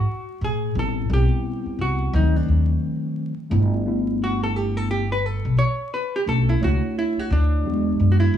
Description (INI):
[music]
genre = hip hop, jazz-hop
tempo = 87 BPM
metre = 4/4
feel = swing 60% on 16ths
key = unclear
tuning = A4 = 445 Hz
[part]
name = archtop guitar, miked and amplified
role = melody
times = 0.0-8.4 s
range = D4 to C#5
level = -26 LUFS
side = equal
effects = none
[part]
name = upright bass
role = bass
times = 0.0-8.4 s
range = G1 to A2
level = -20 LUFS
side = equal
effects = none
[part]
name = mellow tine electric piano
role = accompaniment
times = 0.8-8.4 s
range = Eb3 to C#5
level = -25 LUFS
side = equal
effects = fast stereo tremolo
[sound]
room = little or no reverb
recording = vinyl crackle, studio ambience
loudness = -20 LUFS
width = side -10 dB against mid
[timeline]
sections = 0.0-8.4 A section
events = hollow-body jazz guitar solo 0.0-8.4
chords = 0.0 Eadd9 (rootless); 0.8 Am9; 2.1 D7b9; 3.5 G6; 6.3 Bm7; 7.7 E9